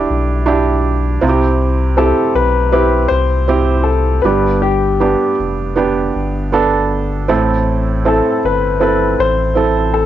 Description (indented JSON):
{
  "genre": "pop",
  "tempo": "79 BPM",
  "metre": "4/4",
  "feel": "straight",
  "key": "A minor",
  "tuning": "A4 = 438 Hz",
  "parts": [
    { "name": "felt-muted upright piano", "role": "accompaniment", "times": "0.0-10.1 s", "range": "G2 to A4", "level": "-15 LUFS", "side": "right 5 dB", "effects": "cassette tape, plate reverb" },
    { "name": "warm sub bass", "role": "bass", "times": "0.0-10.1 s", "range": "F1 to C2", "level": "-18 LUFS", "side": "left 1 dB", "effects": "none" },
    { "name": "clear concert grand piano", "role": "melody", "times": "2.0-10.1 s", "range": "G4 to C5", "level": "-16 LUFS", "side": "left 7 dB", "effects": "cassette tape" }
  ],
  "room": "light reverb",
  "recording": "home recording on cassette, nothing above 7.7 kHz",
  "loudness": "-12 LUFS",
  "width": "side -12 dB against mid",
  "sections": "0.0-10.1 A section",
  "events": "none",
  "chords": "0.0 Em7; 1.2 C; 4.2 G; 7.3 Am",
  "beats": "0.47 | 1.22 1.98 2.73 3.48 | 4.24 5.00 5.77 6.53 | 7.30 8.06 8.82 9.57"
}